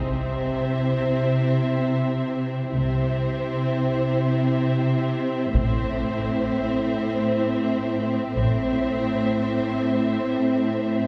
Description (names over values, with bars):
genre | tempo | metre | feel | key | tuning
cinematic, epic orchestral film score | free time | none | none | C major | A4 = 440 Hz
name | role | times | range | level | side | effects
rich symphonic violin section | melody | 0.0-11.1 s | E5 | -37 LUFS | equal | none
warm symphonic violin section | second line | 0.0-11.1 s | C5 | -33 LUFS | equal | none
rich symphonic viola section | accompaniment | 0.0-11.1 s | C4 | -32 LUFS | equal | none
dark French horn section | sustained chords | 0.0-11.1 s | C4 to E4 | -31 LUFS | equal | none
warm symphonic cello section | bass | 0.0-11.1 s | A2 to C3 | -27 LUFS | equal | none
warm symphonic double bass section | bass | 0.0-9.0 s | A1 to C2 | -32 LUFS | equal | none
taiko ensemble | drums | 5.5-6.9 s | none | -32 LUFS | equal | none
room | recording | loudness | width
wet church reverb, RT60 3.2 s | recorded in a church or concert hall | -23 LUFS | mono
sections
0.0-11.1 A section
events
build-up 0.0-11.1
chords
0.0 C; 5.5 Am